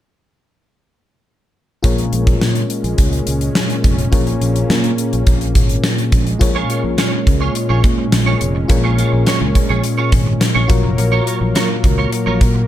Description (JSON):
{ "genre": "1980s-style pop", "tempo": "105 BPM", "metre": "4/4", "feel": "straight", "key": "Bb minor", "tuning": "A4 = 440 Hz", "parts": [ { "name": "FM electric piano", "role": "accompaniment", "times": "1.8-12.7 s", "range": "Bb2 to Db5", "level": "-20 LUFS", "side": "left 3 dB", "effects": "chorus" }, { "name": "brassy analog pad", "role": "sustained chords", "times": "1.8-12.7 s", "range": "Bb2 to Bb4", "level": "-22 LUFS", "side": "right 2 dB", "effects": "chorus" }, { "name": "fingered electric bass", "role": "bass", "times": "1.8-12.6 s", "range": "F1 to Bb2", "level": "-19 LUFS", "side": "equal", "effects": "none" }, { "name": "gated 80s drum kit", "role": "drums", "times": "1.8-12.5 s", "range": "hi-hat, kick drum, snare drum", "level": "-16 LUFS", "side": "equal", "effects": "gated reverb" }, { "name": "clean electric guitar", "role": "riff", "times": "6.4-12.6 s", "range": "F4 to Db5", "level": "-22 LUFS", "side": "right 6 dB", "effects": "ensemble chorus, ping-pong delay" } ], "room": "light reverb, small room ambience", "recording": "none", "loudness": "-13 LUFS", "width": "side -12 dB against mid", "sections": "1.8-6.4 A section; 6.4-12.7 B section", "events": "none", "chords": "1.8 Bbm7; 10.7 Gbmaj7" }